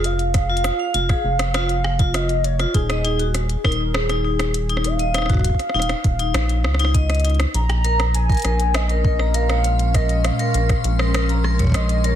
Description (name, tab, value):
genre	IDM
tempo	100 BPM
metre	4/4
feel	straight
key	unclear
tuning	A4 = 441 Hz
part	warbly nostalgic lead	melody	0.0-12.2 s	Ab4 to Bb5	-25 LUFS	right 1 dB	wide subtle chorus, cassette tape, tape echo
part	vibraphone with medium hard mallets	arpeggios	0.0-12.2 s	Eb4 to Bb5	-26 LUFS	left 3 dB	ping-pong delay
part	rubbery square bass	bass	0.0-12.2 s	Eb1 to Db2	-20 LUFS	equal	tube saturation
part	glitchy drum kit	drums	0.0-12.2 s	hi-hat, rim click	-26 LUFS	equal	overdrive, soft clipping on snare, tape echo
part	electronic kick drum	drums	0.3-11.7 s	none	-18 LUFS	equal	overdrive
part	icy glass pad	sustained chords	8.7-12.2 s	Bb2 to C6	-26 LUFS	equal	chorus, built-in reverb
room	light reverb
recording	dense, heavily limited modern master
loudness	-17 LUFS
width	side -10 dB against mid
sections	0.0-12.2 A section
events	none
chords	0.0 N.C.; 2.7 Eb7(no3); 7.5 Bbm9